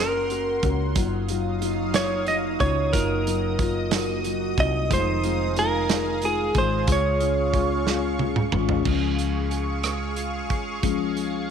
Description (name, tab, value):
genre	six-eight pop ballad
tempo	61 BPM (dotted quarters)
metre	6/8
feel	straight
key	Db major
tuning	A4 = 443 Hz
part	direct-recorded clean electric guitar	melody	0.0-8.5 s	Ab4 to Eb5	-25 LUFS	right 2 dB	none
part	dark French horn section	second line	0.0-8.9 s	Db4 to Gb4	-33 LUFS	right 10 dB	none
part	felt-muted upright piano	accompaniment	0.0-11.5 s	F3 to Gb4	-28 LUFS	left 16 dB	none
part	lush unison pad	sustained chords	0.0-11.5 s	Gb3 to Eb6	-32 LUFS	left 1 dB	chorus, phaser
part	fingerpicked plugged-in steel-string acoustic guitar	arpeggios	0.0-11.5 s	Eb3 to Gb4	-35 LUFS	right 13 dB	none
part	woody fretless electric bass	bass	0.0-11.5 s	F1 to Db2	-28 LUFS	equal	none
part	loose indie drum kit	drums	0.3-11.3 s	crash cymbal, hi-hat, kick drum, rim click, snare drum, toms	-26 LUFS	right 2 dB	none
room	moderate plate reverb, RT60 2.3 s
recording	1960s-style stereo with parts hard left and right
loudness	-21 LUFS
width	side -7 dB against mid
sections	0.0-8.9 A section; 8.9-11.5 B section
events	drum fill 7.9-8.9; felt piano solo 8.9-11.5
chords	0.0 Gb; 1.0 Ebmadd9/Gb; 4.9 Fm7; 6.9 Db